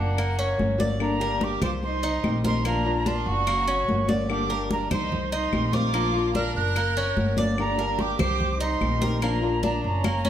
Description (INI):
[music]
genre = latin, Cuban son and guajira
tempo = 146 BPM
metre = 4/4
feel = straight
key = unclear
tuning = A4 = 440 Hz
[part]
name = jazz flute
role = melody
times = 0.0-10.3 s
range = F#5 to F#6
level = -29 LUFS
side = right 3 dB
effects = none
[part]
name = warm chamber violin section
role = second line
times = 0.0-10.3 s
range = Bb3 to Bb4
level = -33 LUFS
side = equal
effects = none
[part]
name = flamenco guitar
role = accompaniment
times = 0.0-10.1 s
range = D3 to G4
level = -30 LUFS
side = left 4 dB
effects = none
[part]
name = Cuban tres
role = arpeggios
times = 0.0-10.3 s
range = A#3 to D5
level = -30 LUFS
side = equal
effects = none
[part]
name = upright bass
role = bass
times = 0.0-10.3 s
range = F#1 to C2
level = -28 LUFS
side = equal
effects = none
[part]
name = claves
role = percussion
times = 0.2-10.3 s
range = none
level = -39 LUFS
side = left 8 dB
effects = none
[part]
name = congas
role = percussion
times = 0.2-10.3 s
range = none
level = -29 LUFS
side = left 1 dB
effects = none
[sound]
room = wet large studio reverb, RT60 1.3 s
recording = none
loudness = -22 LUFS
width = side -10 dB against mid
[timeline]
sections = 0.0-10.3 A section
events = drum fill 10.0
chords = 0.2 F#; 1.0 Gm; 1.8 Cm; 2.6 Bb; 3.5 F#; 4.3 Gm; 5.1 Cm; 5.9 Bb; 6.8 F#; 7.6 Gm; 8.4 Cm; 9.2 Bb